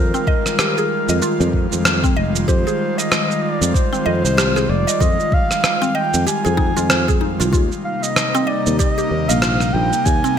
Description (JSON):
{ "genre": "organic downtempo", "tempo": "95 BPM", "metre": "4/4", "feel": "swing 59% on 16ths", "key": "F dorian", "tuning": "A4 = 441 Hz", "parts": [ { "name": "warm clarinet", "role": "melody", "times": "0.0-10.4 s", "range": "Bb4 to Ab5", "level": "-22 LUFS", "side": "equal", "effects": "digital delay" }, { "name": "airy breathy pad", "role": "sustained chords", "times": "0.0-10.4 s", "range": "C3 to F4", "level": "-23 LUFS", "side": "equal", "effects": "chorus, sidechain pumping" }, { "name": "sustaining fretless electric bass", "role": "bass", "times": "0.0-10.2 s", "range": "F1 to F2", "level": "-20 LUFS", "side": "equal", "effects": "analog chorus" }, { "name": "mallet-like synth pluck", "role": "arpeggios", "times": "0.1-10.4 s", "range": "C4 to Eb5", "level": "-24 LUFS", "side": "equal", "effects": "analog chorus, digital delay" }, { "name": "electronic cabasa and rim click", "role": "drums", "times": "0.1-10.4 s", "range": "none", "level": "-20 LUFS", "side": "right 1 dB", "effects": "studio ambience, gated reverb" }, { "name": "electronic kick drum", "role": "drums", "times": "0.3-10.2 s", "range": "none", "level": "-18 LUFS", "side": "equal", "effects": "studio ambience" } ], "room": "light reverb", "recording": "bright 1980s-style digital production", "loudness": "-15 LUFS", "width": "side -8 dB against mid", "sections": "0.0-10.4 A section", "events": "none", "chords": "0.0 Fm9; 7.5 Eb6" }